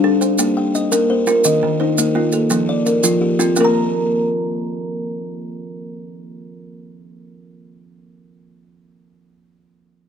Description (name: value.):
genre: southern african traditional, mbira-style interlocking cycle.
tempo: 113 BPM (dotted quarters).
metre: 12/8.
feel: straight.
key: Bb major.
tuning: A4 = 439 Hz.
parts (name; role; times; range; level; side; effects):
buzzing kalimba; arpeggios; 0.0-7.6 s; Eb3 to Bb5; -18 LUFS; left 4 dB; none.
kalimba; arpeggios; 0.0-7.6 s; Eb3 to Bb5; -20 LUFS; right 5 dB; none.
maracas; percussion; 0.2-3.7 s; none; -20 LUFS; right 4 dB; none.
room: moderate small room reverb, RT60 0.5 s.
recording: none.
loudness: -15 LUFS.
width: side -7 dB against mid.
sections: 0.0-3.6 A section; 3.6-7.8 B section.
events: none.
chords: 0.4 Bb; 1.4 Eb5; 2.5 F; 3.6 Bb5.